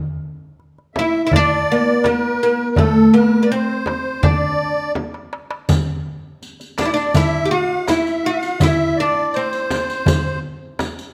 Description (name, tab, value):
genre	Arabic maqam ensemble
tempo	82 BPM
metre	4/4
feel	straight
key	unclear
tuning	A4 = 440 Hz
part	darbuka	percussion	0.6-11.1 s	none	-24 LUFS	equal	none
part	musette accordion	second line	0.9-10.4 s	A4 to F#5-50c	-24 LUFS	equal	none
part	oud	melody	1.0-10.4 s	A3 to G4	-19 LUFS	equal	none
part	frame drum	percussion	1.0-11.0 s	none	-24 LUFS	equal	none
part	riq	percussion	5.7-11.1 s	none	-32 LUFS	equal	none
room	moderate recital hall reverb, RT60 1.6 s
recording	none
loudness	-17 LUFS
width	mono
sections	0.0-11.1 A section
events	drum fill 5.0-5.7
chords	none